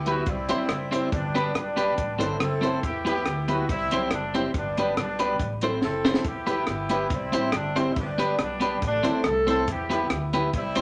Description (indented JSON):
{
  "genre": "ska",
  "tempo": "140 BPM",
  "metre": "4/4",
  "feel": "swing 53% on 8ths",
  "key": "E minor",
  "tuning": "A4 = 441 Hz",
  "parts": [
    { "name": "warm horn section", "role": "melody", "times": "0.0-10.8 s", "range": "G3 to A4", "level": "-31 LUFS", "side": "equal", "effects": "none" },
    { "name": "upright bass", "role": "bass", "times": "0.0-10.8 s", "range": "E1 to E2", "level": "-36 LUFS", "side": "equal", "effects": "none" },
    { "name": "clean electric guitar", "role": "accompaniment", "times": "0.1-10.8 s", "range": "B3 to C5", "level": "-31 LUFS", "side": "equal", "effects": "spring reverb" },
    { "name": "warm upright piano", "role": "stabs", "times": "0.1-10.8 s", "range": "B3 to C5", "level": "-33 LUFS", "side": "equal", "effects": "none" },
    { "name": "compact cocktail drum kit", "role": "drums", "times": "0.1-10.8 s", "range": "hi-hat, kick drum, rim click, snare drum", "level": "-32 LUFS", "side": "equal", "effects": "none" }
  ],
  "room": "wet small room reverb, RT60 0.5 s",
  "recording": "none",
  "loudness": "-26 LUFS",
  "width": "mono",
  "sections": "0.0-10.8 A section",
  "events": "drum fill 5.8-6.3",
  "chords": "0.3 C; 1.1 G; 2.0 Am; 2.8 Em; 3.7 C; 4.5 G; 5.4 Am; 6.3 Em; 7.1 C; 8.0 G; 8.8 Am; 9.7 Em"
}